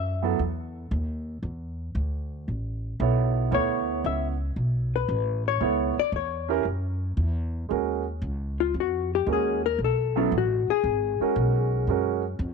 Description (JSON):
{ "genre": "jazz, small-group swing and bop", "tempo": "115 BPM", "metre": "4/4", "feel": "swing 69% on 8ths", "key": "Eb minor from 7.7 s", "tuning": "A4 = 440 Hz", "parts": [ { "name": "hollow-body jazz guitar", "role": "melody", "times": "0.0-0.2, 3.5-11.9 s", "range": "Db4 to E5", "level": "-26 LUFS", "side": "left 14 dB", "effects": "none" }, { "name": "upright bass", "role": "bass", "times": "0.0-12.5 s", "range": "Ab1 to F#2", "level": "-28 LUFS", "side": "equal", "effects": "none" }, { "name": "dark concert grand piano", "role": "accompaniment", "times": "0.2-12.2 s", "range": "F#3 to C#5", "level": "-27 LUFS", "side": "right 14 dB", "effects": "none" } ], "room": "studio ambience", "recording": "1960s-style stereo with parts hard left and right", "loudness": "-24 LUFS", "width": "side -5 dB against mid", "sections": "0.0-7.7 A section; 7.7-12.5 B section", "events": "hollow-body jazz guitar solo 7.7-12.5", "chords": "0.0 N.C.; 1.4 Dsus2; 2.5 Aadd9; 3.5 Dsus2; 5.6 C#m7b5; 6.7 Esus2; 7.7 Ebm9; 9.8 B5; 10.8 Abm11; 11.9 Gbmaj9" }